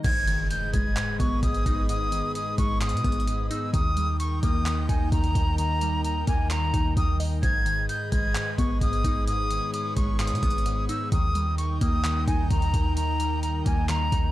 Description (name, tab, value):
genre	hip hop, trap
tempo	130 BPM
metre	4/4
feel	half-time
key	G# harmonic minor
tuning	A4 = 440 Hz
part	silver concert flute	melody	0.0-14.3 s	G#5 to G#6	-29 LUFS	equal	tape echo
part	glassy digital keys	accompaniment	0.0-14.3 s	G#2 to D#5	-31 LUFS	left 3 dB	chorus
part	airy breathy pad	sustained chords	0.0-14.3 s	D#3 to G5	-35 LUFS	right 1 dB	chorus
part	warm 808-style bass	bass	0.0-14.3 s	G#1 to B2	-27 LUFS	equal	none
part	breakbeat sampler-style drum kit	drums	0.0-14.2 s	crash cymbal, handclaps, hi-hat, kick drum	-27 LUFS	equal	none
part	impact	sound effects	0.0-1.9 s	none	-36 LUFS	equal	none
room	little or no reverb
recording	dry, gritty hardware recording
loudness	-23 LUFS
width	side -15 dB against mid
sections	0.0-14.3 A section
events	impact 0.0-1.9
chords	0.0 G#m; 3.7 D#; 7.4 G#m; 11.1 D#